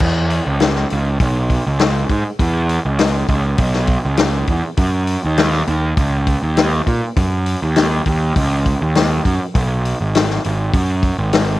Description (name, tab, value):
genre	psychedelic rock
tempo	101 BPM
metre	4/4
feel	straight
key	E major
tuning	A4 = 442 Hz
part	fuzz picked electric bass	bass	0.0-11.6 s	G#1 to A#2	-16 LUFS	right 1 dB	overdrive
part	vintage drum kit	drums	0.0-11.5 s	crash cymbal, hi-hat, kick drum, snare drum	-18 LUFS	left 2 dB	none
room	little or no reverb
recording	1960s-style stereo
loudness	-14 LUFS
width	side -16 dB against mid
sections	0.0-11.6 A section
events	none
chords	none